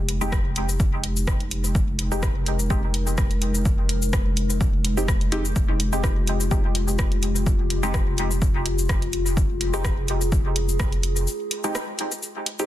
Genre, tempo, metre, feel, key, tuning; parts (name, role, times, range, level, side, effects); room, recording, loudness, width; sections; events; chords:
dub techno; 126 BPM; 4/4; swing 54% on 16ths; F minor; A4 = 443 Hz
warbly tape-like pad; sustained chords; 0.0-12.7 s; Ab3 to Bb4; -30 LUFS; left 2 dB; chorus, built-in reverb, sidechain pumping
warm sub bass; bass; 0.0-11.3 s; F1; -26 LUFS; equal; sidechain pumping
deep house drum kit; drums; 0.1-12.7 s; cabasa, hi-hat, rim click; -30 LUFS; left 1 dB; overdrive, studio reverb, dub echo
filtered dub chord stab; stabs; 0.2-12.7 s; Ab3 to G4; -30 LUFS; equal; chorus, phaser, sidechain pumping, dub echo
electronic kick drum; drums; 0.3-10.9 s; -23 LUFS; equal; overdrive, studio reverb
little or no reverb; dense, heavily limited modern master, lossy compression artefacts; -20 LUFS; side -13 dB against mid
0.0-12.7 A section
break 11.3-12.7
0.0 Fm9